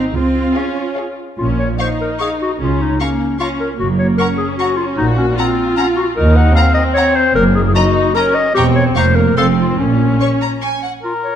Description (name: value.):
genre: cinematic, playful, whimsical film cue.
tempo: 150 BPM.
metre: 3/4.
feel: straight.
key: Bb minor.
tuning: A4 = 439 Hz.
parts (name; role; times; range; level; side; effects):
clear studio violin section; melody; 0.0-10.7 s; F5 to Db6; -26 LUFS; left 4 dB; none.
rich chamber violin section; second line; 0.0-10.9 s; Ab4 to C6; -25 LUFS; left 1 dB; none.
rich chamber viola section; accompaniment; 0.0-10.8 s; Bb3 to Gb4; -20 LUFS; equal; none.
rich chamber cello section; bass; 0.0-10.1 s; Eb2 to Db4; -19 LUFS; right 1 dB; none.
warm chamber double bass section; bass; 0.0-10.1 s; E1 to Eb2; -18 LUFS; right 2 dB; none.
clear clarinet; second line; 1.4-11.4 s; C4 to Gb5; -17 LUFS; left 3 dB; none.
flute section; second line; 11.0-11.4 s; Bb5; -27 LUFS; left 4 dB; none.
warm oboe; second line; 11.0-11.4 s; Bb4; -21 LUFS; left 3 dB; none.
room: moderate scoring stage reverb, RT60 1.5 s.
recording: dark, warm production.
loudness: -12 LUFS.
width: side -9 dB against mid.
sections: 0.0-1.4 A section; 1.4-11.0 B section.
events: none.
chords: 0.1 Db; 1.4 Bbm; 2.6 Bbm/Db; 3.8 Gb; 5.0 Gb/Bb; 6.2 Ebm; 7.4 Ebm/Gb; 8.6 E5; 9.0 Bb5/F; 9.4 F; 9.8 Bbm.